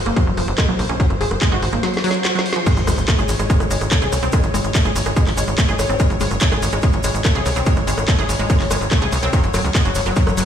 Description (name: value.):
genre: psychedelic trance.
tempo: 144 BPM.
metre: 4/4.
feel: straight.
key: unclear.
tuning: A4 = 440 Hz.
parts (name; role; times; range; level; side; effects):
pulsing gated texture; sustained chords; 0.0-10.4 s; B#4 to C#5; -27 LUFS; left 3 dB; chorus, built-in reverb, sidechain pumping.
wide unison pluck; riff; 0.1-10.4 s; E#3 to G#4; -23 LUFS; equal; auto-pan, sidechain pumping, tape echo.
tight sequencer bass; bass; 0.1-10.4 s; F#1 to C#2; -21 LUFS; equal; none.
drum and bass drum kit; drums; 0.1-10.4 s; crash cymbal, handclaps, hi-hat, rim click, snare drum; -24 LUFS; equal; none.
electronic kick drum; drums; 0.2-10.2 s; none; -18 LUFS; equal; overdrive.
cabasa; percussion; 2.7-10.4 s; none; -32 LUFS; right 5 dB; none.
sub drop; sound effects; 2.7-4.3 s; none; -27 LUFS; equal; none.
room: light reverb.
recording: played on a big sound system in a bare room, stone room reverb.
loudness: -15 LUFS.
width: side -9 dB against mid.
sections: 0.0-2.7 A section; 2.7-10.4 B section.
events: drum fill 1.8-2.7; band accent 2.5; drop 2.7-10.4; impact 2.7-4.3.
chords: 0.0 F#5; 2.7 F#sus2 (rootless); 9.3 F#5.